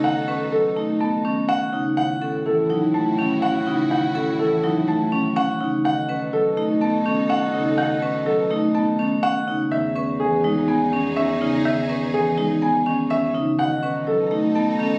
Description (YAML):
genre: classical, minimalist pattern music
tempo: 124 BPM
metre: 4/4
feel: straight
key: B mixolydian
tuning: A4 = 440 Hz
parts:
  - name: dark grand piano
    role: melody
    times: 0.0-14.9 s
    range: G#4 to A5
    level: -26 LUFS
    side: equal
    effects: none
  - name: marimba with medium hard mallets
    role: accompaniment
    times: 0.0-15.0 s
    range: C#3 to C#4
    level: -27 LUFS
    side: equal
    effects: none
  - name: rich studio violin section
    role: sustained chords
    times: 0.0-15.0 s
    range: D#4 to A4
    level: -37 LUFS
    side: equal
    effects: none
  - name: vibraphone with hard mallets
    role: arpeggios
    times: 0.0-15.0 s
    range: C#4 to B4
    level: -28 LUFS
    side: equal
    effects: none
  - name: dark bass clarinet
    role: bass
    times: 0.0-15.0 s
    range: E2 to B2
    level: -29 LUFS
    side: equal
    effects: none
room: moderate recital hall reverb, RT60 1.4 s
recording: recorded on a phone in the room, studio reverb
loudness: -21 LUFS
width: mono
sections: 0.0-15.0 A section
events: none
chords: 0.0 B7; 2.0 F#m7/A; 5.8 B7; 9.7 Emaj7; 13.6 B7